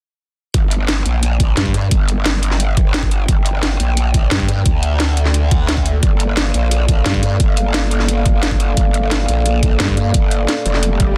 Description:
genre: dark technical drum and bass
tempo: 175 BPM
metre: 4/4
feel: straight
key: G minor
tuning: A4 = 440 Hz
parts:
  - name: dark analog pad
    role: sustained chords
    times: 1.1-11.2 s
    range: Bb3 to G5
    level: -26 LUFS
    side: equal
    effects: chorus, sidechain pumping
  - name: growl bass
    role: bass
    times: 0.5-11.2 s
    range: F1 to G2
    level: -19 LUFS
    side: equal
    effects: chorus, tube saturation
  - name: drum and bass drum kit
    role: drums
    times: 0.5-11.1 s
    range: hi-hat, snare drum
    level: -23 LUFS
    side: equal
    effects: none
  - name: electronic kick drum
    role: drums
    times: 0.5-11.1 s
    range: none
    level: -18 LUFS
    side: equal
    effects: overdrive
  - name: growling FM bass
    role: bass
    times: 1.6-1.7, 4.3-4.5, 7.1-7.2, 9.8-10.0 s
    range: G2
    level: -21 LUFS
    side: equal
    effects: none
  - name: swell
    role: sound effects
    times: 11.0-11.2 s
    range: none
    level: -26 LUFS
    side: equal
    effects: none
room: little or no reverb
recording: dense, heavily limited modern master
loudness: -16 LUFS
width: mono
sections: 0.5-11.2 A section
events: swell 11.0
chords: 0.5 Gmadd9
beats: | 0.54 0.89 1.23 1.57 | 1.91 2.26 2.60 2.94 | 3.29 3.63 3.97 4.31 | 4.66 5.00 5.34 5.68 | 6.03 6.37 6.71 7.06 | 7.40 7.74 8.09 8.43 | 8.77 9.11 9.46 9.80 | 10.14 10.48 10.83 11.17

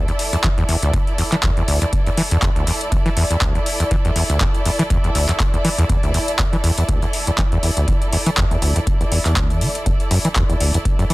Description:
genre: acid house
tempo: 121 BPM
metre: 4/4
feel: swing 56% on 16ths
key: unclear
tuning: A4 = 438 Hz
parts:
  - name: acid bass, saw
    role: riff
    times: 0.0-11.1 s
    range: D2 to E3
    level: -19 LUFS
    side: equal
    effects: overdrive, sidechain pumping
  - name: rich studio string section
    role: texture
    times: 0.0-11.1 s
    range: E4 to D5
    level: -25 LUFS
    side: right 1 dB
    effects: sidechain pumping
  - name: electro analog drum machine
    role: drums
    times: 0.1-11.1 s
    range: handclaps, hi-hat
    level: -23 LUFS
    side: equal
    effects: none
  - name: electronic kick drum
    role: drums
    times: 0.4-11.0 s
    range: none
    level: -20 LUFS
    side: equal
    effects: none
room: light reverb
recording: dense, heavily limited modern master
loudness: -16 LUFS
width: side -20 dB against mid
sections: 0.0-11.1 A section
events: none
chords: 0.0 Dsus2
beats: 0.44 0.94 1.43 | 1.93 2.42 2.92 3.42 | 3.91 4.41 4.90 5.40 | 5.89 6.39 6.89 7.38 | 7.88 8.37 8.87 9.37 | 9.86 10.36 10.85

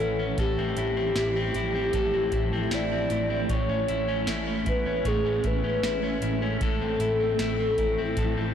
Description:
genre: dream pop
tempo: 77 BPM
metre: 4/4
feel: straight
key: unclear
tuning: A4 = 440 Hz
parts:
  - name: hollow clarinet-like synth lead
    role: melody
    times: 0.0-8.5 s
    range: G4 to D5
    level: -28 LUFS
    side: left 1 dB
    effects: chorus, tape echo
  - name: granular cloud pad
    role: sustained chords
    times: 0.0-8.5 s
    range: E3 to E4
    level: -33 LUFS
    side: right 2 dB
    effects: built-in reverb
  - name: electric guitar at the edge of break-up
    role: arpeggios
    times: 0.0-8.5 s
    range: A2 to C#5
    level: -30 LUFS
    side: left 3 dB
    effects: wide subtle chorus, tape echo
  - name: vintage muted fingered electric bass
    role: bass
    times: 0.0-8.5 s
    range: A1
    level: -33 LUFS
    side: right 1 dB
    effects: transformer saturation
  - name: vibraphone with medium mallets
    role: texture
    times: 0.0-3.8 s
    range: E4 to F#5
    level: -42 LUFS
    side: right 1 dB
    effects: none
  - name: booming analog drum machine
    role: drums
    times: 0.4-8.4 s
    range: hi-hat, kick drum, snare drum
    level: -31 LUFS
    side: right 1 dB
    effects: none
room: moderate lush hall reverb, RT60 2.4 s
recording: blown-out, overdriven recording, overdrive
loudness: -24 LUFS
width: side -8 dB against mid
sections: 0.0-8.5 A section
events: none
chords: 0.4 Fmaj7/A; 3.5 Amaj7; 6.6 Fmaj7/A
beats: | 0.38 1.16 1.94 2.72 | 3.50 4.28 5.05 5.83 | 6.61 7.39 8.17

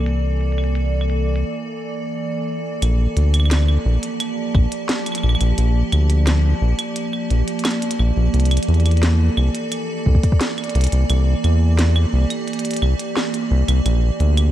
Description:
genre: IDM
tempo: 87 BPM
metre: 4/4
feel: straight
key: Bb lydian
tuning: A4 = 440 Hz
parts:
  - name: icy glass pad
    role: sustained chords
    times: 0.0-14.5 s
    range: E3 to D5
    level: -24 LUFS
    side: right 2 dB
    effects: chorus, built-in reverb, vintage 12-bit sampler grit
  - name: round analog bass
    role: bass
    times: 0.0-14.5 s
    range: Bb1 to E2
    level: -16 LUFS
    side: equal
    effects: none
  - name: glitchy drum kit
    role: drums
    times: 0.0-14.5 s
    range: claves, hi-hat, snare drum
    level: -25 LUFS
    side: right 1 dB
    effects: low-pass filter on hats, low-pass filter on perc, low-pass filter on snare
  - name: electronic kick drum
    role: drums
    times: 4.5-4.7, 10.1-10.4 s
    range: none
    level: -15 LUFS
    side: equal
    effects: none
room: light reverb, digital ambience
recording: dark, warm production, low-pass filter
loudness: -16 LUFS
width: side -13 dB against mid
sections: 0.0-2.8 A section; 2.8-14.5 B section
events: filter sweep 0.0-2.8; break 1.4-2.8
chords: 0.0 C13; 2.8 Bb6; 8.3 C13; 13.9 Bb6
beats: | 0.06 0.75 1.44 2.13 | 2.82 3.51 4.20 4.89 | 5.58 6.27 6.96 7.65 | 8.34 9.03 9.72 10.41 | 11.10 11.79 12.48 13.17 | 13.86

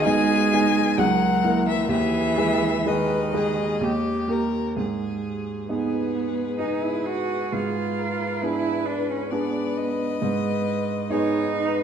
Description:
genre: classical, slow romantic movement for piano quartet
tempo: 62-68 BPM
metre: 3/4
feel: rubato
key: G# minor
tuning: A4 = 440 Hz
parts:
  - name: clear violin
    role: melody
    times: 0.0-11.8 s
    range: G#4 to G#5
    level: -28 LUFS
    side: left 8 dB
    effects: none
  - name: rich cello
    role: second line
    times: 0.0-11.8 s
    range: D#3 to F#4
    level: -26 LUFS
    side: right 6 dB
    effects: none
  - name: rich violin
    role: second line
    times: 0.0-11.8 s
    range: G4 to B4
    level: -32 LUFS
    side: left 4 dB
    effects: none
  - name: warm baby grand piano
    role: accompaniment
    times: 0.0-11.8 s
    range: B1 to B4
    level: -24 LUFS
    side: right 2 dB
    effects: none
room: wet recital hall reverb, RT60 1.6 s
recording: dark, warm production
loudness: -21 LUFS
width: side -8 dB against mid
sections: 0.0-4.8 A section; 4.8-11.8 B section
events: none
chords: 0.0 G#m/B; 1.0 A#dim/C#; 1.9 G#m/D#; 3.8 D#; 4.8 G#m; 7.5 G#dim7; 10.2 G#m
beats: 0.06 0.99 | 1.91 2.87 3.83 | 4.78 5.70 6.59 | 7.51 8.42 9.31 | 10.20 11.10

